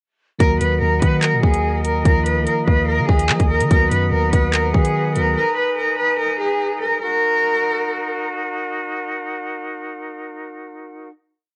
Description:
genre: hip hop, drill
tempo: 145 BPM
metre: 4/4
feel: half-time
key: Eb minor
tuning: A4 = 435 Hz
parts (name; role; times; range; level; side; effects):
- warm cello; melody; 0.4-8.2 s; Ab4 to Cb5; -22 LUFS; equal; cassette tape, analog delay
- mellow tine electric piano; accompaniment; 0.4-5.4 s; Eb3 to B4; -26 LUFS; equal; cassette tape
- flute section; sustained chords; 0.4-11.1 s; Eb4 to Eb6; -29 LUFS; equal; cassette tape
- long sustained 808-style bass; bass; 0.4-5.4 s; D2 to Gb3; -24 LUFS; equal; none
- drill drum kit; drums; 0.4-5.3 s; handclaps, hi-hat, kick drum; -20 LUFS; equal; cassette tape
room: light reverb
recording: home recording on cassette, nothing above 10.6 kHz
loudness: -19 LUFS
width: mono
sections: 0.4-7.0 hook; 7.0-10.3 final chord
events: none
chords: 0.4 Ebm; 2.1 Bbsus4; 3.7 B/D#; 5.4 Abmadd9/Eb; 7.0 Ebm

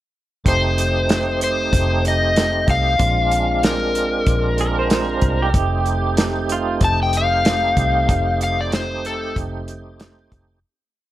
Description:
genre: straight-eighth soul blues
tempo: 94 BPM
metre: 4/4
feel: swing 55% on 16ths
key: F mixolydian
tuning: A4 = 440 Hz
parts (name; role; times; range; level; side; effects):
- tonewheel organ; accompaniment; 0.4-10.6 s; Ab3 to G4; -24 LUFS; right 4 dB; slow rotary speaker, overdrive, chorus vibrato, plate reverb
- overdriven slide guitar; melody; 0.5-9.4 s; A4 to A5; -20 LUFS; left 3 dB; plate reverb
- vintage muted fingered electric bass; bass; 0.5-10.6 s; F1 to C2; -22 LUFS; equal; none
- warm soul drum kit; drums; 0.5-10.5 s; hi-hat, kick drum, snare drum; -20 LUFS; equal; none
- electric guitar through a small old amp; second line; 4.6-6.8 s; F4 to C5; -24 LUFS; right 6 dB; tremolo, plate reverb
room: light reverb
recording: none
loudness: -16 LUFS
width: side -14 dB against mid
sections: 0.5-10.6 head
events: fade-out 8.1-10.6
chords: 0.5 F7; 3.0 Bb7; 5.5 F7

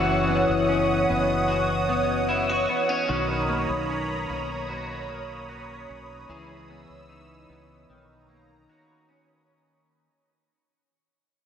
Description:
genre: dream pop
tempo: 75 BPM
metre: 4/4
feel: straight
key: B major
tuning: A4 = 441 Hz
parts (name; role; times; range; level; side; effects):
- lush unison pad; sustained chords; 0.0-9.5 s; C#5 to E6; -26 LUFS; right 1 dB; chorus, phaser, shimmer reverb
- electric guitar at the edge of break-up; arpeggios; 0.0-10.1 s; D#3 to G#4; -27 LUFS; left 3 dB; analog chorus, tape echo, shimmer reverb
- mellow fretless electric bass; bass; 0.0-8.6 s; F#1 to C#2; -33 LUFS; equal; analog chorus
room: wet lush hall reverb, RT60 2.5 s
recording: dreamy mix soaked in reverb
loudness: -22 LUFS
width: side -8 dB against mid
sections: 0.0-9.5 A section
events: fade-out 0.0-9.5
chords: 0.0 F#7sus4; 3.1 Bmaj9; 6.3 C#m9; 7.9 Bmaj9

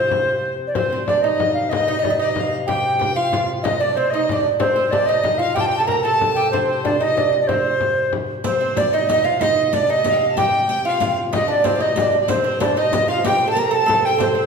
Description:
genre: medieval dance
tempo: 125 BPM (dotted quarters)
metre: 6/8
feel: straight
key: C dorian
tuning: A4 = 439 Hz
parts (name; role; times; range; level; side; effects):
- alto recorder; melody; 0.0-14.5 s; C5 to Bb5; -19 LUFS; equal; none
- bright fiddle; second line; 0.0-14.5 s; C5 to Bb5; -26 LUFS; left 6 dB; none
- oud; second line; 0.0-14.5 s; C4 to Bb4; -22 LUFS; right 6 dB; none
- warm viola da gamba; drone; 0.0-14.5 s; C3; -31 LUFS; left 1 dB; none
- frame drum; percussion; 0.1-14.3 s; none; -26 LUFS; left 5 dB; none
- riq; percussion; 8.4-14.3 s; none; -31 LUFS; right 2 dB; none
room: wet recital hall reverb, RT60 1.6 s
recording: recorded in a church or concert hall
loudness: -16 LUFS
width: side -5 dB against mid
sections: 0.8-8.4 A section; 8.4-14.5 A section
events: none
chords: none

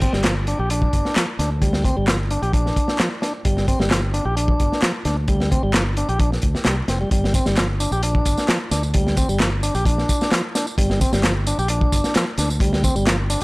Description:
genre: breakbeat, breaks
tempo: 131 BPM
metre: 4/4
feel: straight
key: unclear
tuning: A4 = 440 Hz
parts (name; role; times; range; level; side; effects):
- tonewheel organ; riff; 0.0-13.4 s; F3 to G4; -23 LUFS; equal; overdrive, analog delay
- fingered electric bass; bass; 0.0-13.4 s; F1 to D2; -22 LUFS; equal; none
- crunchy breakbeat drum kit; drums; 0.0-13.4 s; hi-hat, kick drum, snare drum; -21 LUFS; equal; none
- electronic handclaps and tambourine; drums; 0.2-13.4 s; none; -26 LUFS; equal; none
room: studio ambience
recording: dry, gritty hardware recording, transformer saturation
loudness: -17 LUFS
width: side -25 dB against mid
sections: 0.0-13.4 A section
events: none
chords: 0.0 Gm7

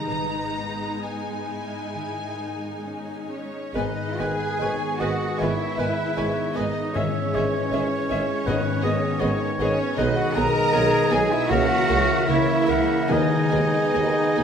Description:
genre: classical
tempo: 63-81 BPM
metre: 4/4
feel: rubato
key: G# minor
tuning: A4 = 439 Hz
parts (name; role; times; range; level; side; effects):
- warm symphonic violin section; melody; 0.0-14.4 s; D#5 to A#5; -36 LUFS; left 2 dB; none
- warm symphonic violin section; second line; 0.0-14.4 s; B3 to A#5; -34 LUFS; left 2 dB; none
- warm symphonic viola section; accompaniment; 0.0-14.4 s; G#3 to B4; -32 LUFS; equal; none
- concert harp; arpeggios; 0.0-14.4 s; G#2 to B4; -32 LUFS; left 7 dB; none
- warm symphonic cello section; bass; 0.0-14.4 s; G#2 to A#4; -28 LUFS; right 2 dB; none
- warm symphonic double bass section; bass; 0.0-14.4 s; G#1 to D#2; -31 LUFS; right 3 dB; none
- mellow hollow concert flute; second line; 3.3-14.4 s; C#5 to A#5; -31 LUFS; left 1 dB; none
- mellow bassoon; accompaniment; 3.7-14.4 s; G#3 to B3; -32 LUFS; right 1 dB; none
- dark French horn section; sustained chords; 3.7-14.4 s; A#3 to A#4; -30 LUFS; left 2 dB; none
- warm trombone section; sustained chords; 3.7-14.4 s; C#3 to G#3; -30 LUFS; right 2 dB; none
- clear tuba; bass; 3.7-14.4 s; G#1 to D#2; -32 LUFS; right 3 dB; none
- clear clarinet; second line; 3.8-14.4 s; B4 to G#5; -31 LUFS; left 1 dB; none
- clear oboe; second line; 3.8-14.4 s; G#4 to E5; -31 LUFS; right 2 dB; none
- timpani; percussion; 7.0-14.3 s; G#2 to D#3; -30 LUFS; left 3 dB; none
room: wet scoring stage reverb, RT60 1.8 s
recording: none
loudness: -21 LUFS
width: side -7 dB against mid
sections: 0.0-3.8 A section; 3.8-14.4 A section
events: none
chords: 0.1 G#m; 7.0 C#m/G#; 8.5 G#m; 10.0 G#m/B; 11.5 A#dim/C#; 13.1 G#m/D#

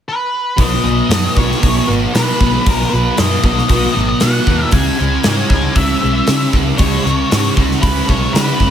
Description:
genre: rock, shoegaze and dream pop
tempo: 116 BPM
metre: 4/4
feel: straight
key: B major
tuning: A4 = 440 Hz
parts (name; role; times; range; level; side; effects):
- octave-fuzz lead guitar; melody; 0.1-8.7 s; A#4 to G#5; -20 LUFS; left 2 dB; distortion, digital delay
- thick fuzz guitar; riff; 0.6-8.7 s; B2 to C#4; -16 LUFS; equal; distortion, ensemble chorus
- vintage muted picked electric bass; bass; 0.6-8.7 s; F#1 to C#3; -18 LUFS; equal; none
- gated 80s drum kit; drums; 0.6-8.7 s; hi-hat, kick drum, snare drum; -16 LUFS; equal; none
room: small room ambience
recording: none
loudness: -12 LUFS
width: side -9 dB against mid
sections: 0.6-8.7 A section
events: none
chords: 0.0 N.C.; 0.6 B; 4.7 C#5

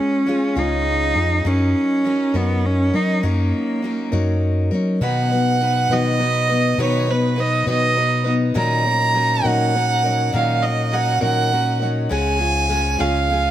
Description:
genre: acoustic folk duo or small band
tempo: 68 BPM (dotted quarters)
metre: 6/8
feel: straight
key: F# major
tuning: A4 = 440 Hz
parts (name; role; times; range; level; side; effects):
- rich cello; melody; 0.0-4.7 s; A#3 to D#4; -20 LUFS; right 1 dB; none
- picked steel-string acoustic guitar; accompaniment; 0.0-13.5 s; A#2 to B4; -23 LUFS; left 3 dB; none
- fingered electric bass; bass; 0.6-13.5 s; C#2 to F#3; -21 LUFS; equal; none
- rich fiddle; second line; 5.0-13.5 s; B4 to A#5; -19 LUFS; right 4 dB; none
room: moderate plate reverb, RT60 3.6 s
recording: none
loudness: -16 LUFS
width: side -12 dB against mid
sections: 0.0-5.0 A section; 5.0-13.5 B section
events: fiddle solo 5.0-13.5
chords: 0.0 C#; 1.4 F#6; 5.0 B; 8.6 F#6/A#; 12.1 C#

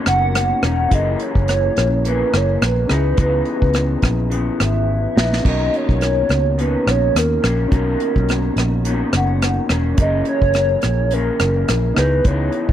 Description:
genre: indie pop, bedroom pop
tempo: 106 BPM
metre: 4/4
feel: swing 55% on 16ths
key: B major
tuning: A4 = 441 Hz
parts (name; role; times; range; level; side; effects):
- electric guitar through a small old amp; accompaniment; 0.0-12.7 s; F#2 to D#4; -23 LUFS; left 3 dB; lush chorus, vibrato effect
- soft electric-piano-like synth keys; accompaniment; 0.0-12.7 s; C#4 to B4; -27 LUFS; right 3 dB; chorus, cassette tape
- hollow clarinet-like synth lead; melody; 0.1-12.7 s; A#4 to F#5; -21 LUFS; right 1 dB; analog chorus
- vintage muted fingered electric bass; bass; 0.1-12.7 s; E1 to D#2; -19 LUFS; equal; none
- unplugged drum kit; drums; 0.1-12.7 s; crash cymbal, hi-hat, kick drum, rim click, snare drum; -18 LUFS; equal; none
room: studio reverb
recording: dry, close 1970s-style studio recording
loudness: -15 LUFS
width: side -11 dB against mid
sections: 0.0-12.7 A section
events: drum fill 4.9-5.4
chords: 0.0 Bmaj9; 0.9 F#7; 2.9 C#m9; 5.4 Bmaj9; 10.0 F#7; 12.0 C#m9

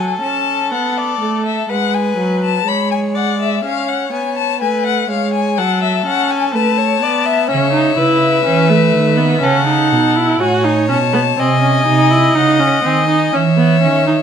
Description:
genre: classical, baroque-style fugue for string quartet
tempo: 62 BPM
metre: 4/4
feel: straight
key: F# minor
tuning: A4 = 439 Hz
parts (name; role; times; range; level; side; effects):
- warm violin; melody; 0.0-14.2 s; D5 to B5; -18 LUFS; left 11 dB; none
- rich violin; second line; 0.0-14.2 s; A4 to E5; -19 LUFS; left 2 dB; none
- warm viola; accompaniment; 0.0-14.2 s; F#3 to F#4; -17 LUFS; right 3 dB; none
- dark cello; bass; 7.5-14.2 s; A2 to E3; -16 LUFS; right 5 dB; none
room: moderate recital hall reverb, RT60 1.6 s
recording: close, detailed microphones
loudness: -12 LUFS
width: side -8 dB against mid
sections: 0.0-14.2 A section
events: none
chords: 0.0 F#m; 3.6 C#7; 5.6 F#m; 7.5 C#m; 9.4 D#m7b5; 11.4 G#7/B#; 13.3 C#m

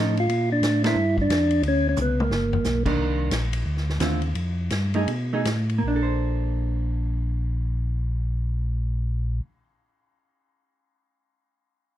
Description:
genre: soul jazz organ trio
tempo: 151-179 BPM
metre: 4/4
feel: swing 63% on 8ths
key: Bb major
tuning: A4 = 440 Hz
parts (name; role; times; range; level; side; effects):
- vintage hollow-body jazz guitar; accompaniment; 0.0-9.6 s; D3 to C5; -27 LUFS; right 3 dB; none
- mellow tonewheel organ; bass; 0.0-9.4 s; G1 to B2; -24 LUFS; equal; overdrive, chorus vibrato, slow rotary speaker
- percussive tonewheel organ; melody; 0.2-2.8 s; Bb3 to F4; -22 LUFS; equal; slow rotary speaker
- vintage drum kit; drums; 0.2-5.8 s; crash cymbal, hi-hat, kick drum, ride cymbal, snare drum, toms; -30 LUFS; left 1 dB; none
room: moderate large studio reverb, RT60 0.9 s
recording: dark, warm production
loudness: -22 LUFS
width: side -12 dB against mid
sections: 0.0-3.0 A section; 3.0-5.8 B section; 5.8-9.0 C section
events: band accent 0.8; drum fill 2.0-2.6; slowing down 3.0-5.8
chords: 0.3 Bbmaj7; 1.6 Bmadd9; 2.3 G; 3.0 Cm9; 3.7 Dm7; 4.4 F9; 5.1 B6; 5.8 Bbmaj9

